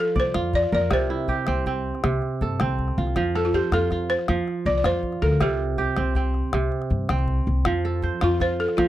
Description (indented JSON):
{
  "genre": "west african traditional, West African string and xylophone music",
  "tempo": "107 BPM (dotted quarters)",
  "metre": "12/8",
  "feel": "straight",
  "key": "F major",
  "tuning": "A4 = 439 Hz",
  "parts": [
    { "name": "balafon", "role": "melody", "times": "0.0-8.9 s", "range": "F4 to D5", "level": "-23 LUFS", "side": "left 1 dB", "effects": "none" },
    { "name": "kora", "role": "arpeggios", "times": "0.0-8.9 s", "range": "C3 to D5", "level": "-25 LUFS", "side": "right 4 dB", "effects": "none" },
    { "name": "upright bass", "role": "bass", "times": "0.2-8.9 s", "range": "C2 to G2", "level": "-25 LUFS", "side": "left 1 dB", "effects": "none" },
    { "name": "calabash", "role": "percussion", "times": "0.2-8.9 s", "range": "none", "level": "-28 LUFS", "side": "left 2 dB", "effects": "none" }
  ],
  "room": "light reverb",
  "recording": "dry, close 1970s-style studio recording",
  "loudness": "-21 LUFS",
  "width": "side -13 dB against mid",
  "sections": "0.0-7.7 A section; 7.7-8.9 B section",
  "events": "balafon solo 7.7-8.9",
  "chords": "0.0 F; 0.9 C; 3.2 F; 5.4 C5; 7.7 F"
}